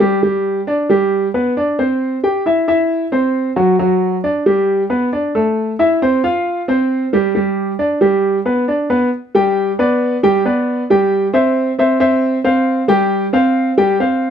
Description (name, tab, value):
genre	latin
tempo	135 BPM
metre	4/4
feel	straight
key	unclear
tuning	A4 = 439 Hz
part	warm baby grand piano	solo	0.0-14.3 s	F#3 to G5	-13 LUFS	equal	none
room	light reverb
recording	close, detailed microphones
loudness	-13 LUFS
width	side -8 dB against mid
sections	0.0-9.1 A section; 9.1-14.3 B section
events	none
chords	0.2 G; 2.0 C; 3.8 D; 4.7 G; 5.6 Am; 6.5 F5; 7.3 G; 10.9 C; 12.7 Fsus2